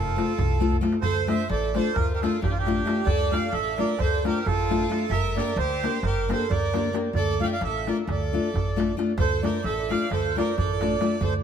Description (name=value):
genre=balkan folk, Balkan wedding band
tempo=265 BPM (eighths)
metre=9/8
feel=straight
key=D minor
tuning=A4 = 436 Hz
part: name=accordion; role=melody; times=0.0-11.3 s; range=F4 to G5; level=-28 LUFS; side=right 6 dB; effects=tape echo
part: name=bright violin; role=second line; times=0.0-11.3 s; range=D4 to E5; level=-32 LUFS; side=equal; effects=none
part: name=upright bass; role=bass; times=0.0-11.4 s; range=F1 to D2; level=-28 LUFS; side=left 1 dB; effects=none
part: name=darbuka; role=percussion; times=0.1-11.3 s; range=none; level=-30 LUFS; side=right 3 dB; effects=none
part: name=nylon-string guitar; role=accompaniment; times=0.2-11.1 s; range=A3 to Bb4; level=-27 LUFS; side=left 5 dB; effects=none
room=moderate plate reverb, RT60 3.0 s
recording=heard from further back in the room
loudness=-22 LUFS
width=side -8 dB against mid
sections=0.0-9.2 A section; 9.2-11.4 B section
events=drum fill 0.6-1.0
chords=0.0 F; 1.0 Dm; 5.1 Gm; 7.1 Dm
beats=0.11 0.34 0.57 0.79 | 1.02 1.25 1.47 1.70 1.93 2.15 2.38 2.61 2.83 | 3.06 3.29 3.51 3.74 3.97 4.19 4.42 4.65 4.87 | 5.10 5.33 5.55 5.78 6.01 6.23 6.46 6.69 6.91 | 7.14 7.37 7.59 7.82 8.05 8.27 8.50 8.72 8.95 | 9.18 9.40 9.63 9.86 10.08 10.31 10.53 10.76 10.98 | 11.21